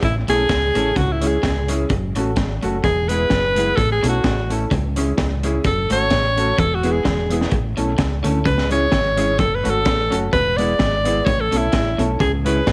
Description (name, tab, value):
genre	ska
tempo	128 BPM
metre	4/4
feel	swing 55% on 8ths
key	A major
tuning	A4 = 440 Hz
part	bright alto saxophone	melody	0.0-12.7 s	E4 to D5	-22 LUFS	equal	none
part	clean electric guitar	riff	0.0-12.7 s	E2 to G#3	-32 LUFS	equal	none
part	fingered electric bass	bass	0.0-12.7 s	E1 to G#2	-25 LUFS	equal	none
part	crunchy breakbeat drum kit	drums	0.0-12.7 s	hi-hat, kick drum, snare drum	-25 LUFS	equal	tape echo
part	hollow-body jazz guitar	accompaniment	0.3-12.6 s	G#3 to F#4	-29 LUFS	equal	none
part	dark upright piano	stabs	0.3-12.6 s	B3 to A4	-30 LUFS	equal	none
room	light reverb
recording	none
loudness	-19 LUFS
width	mono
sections	0.0-12.7 A section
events	alto saxophone solo 0.0-12.7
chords	0.0 A; 1.0 C#m; 1.9 F#m; 2.8 E; 3.8 A; 4.7 C#m; 5.7 F#m; 6.6 E; 7.5 A; 8.5 C#m; 9.4 F#m; 10.3 E; 11.3 A; 12.2 C#m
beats	| 0.03 0.50 0.97 1.44 | 1.90 2.37 2.84 3.31 | 3.78 4.25 4.71 5.18 | 5.65 6.12 6.59 7.05 | 7.52 7.99 8.46 8.93 | 9.39 9.86 10.33 10.80 | 11.27 11.73 12.20 12.67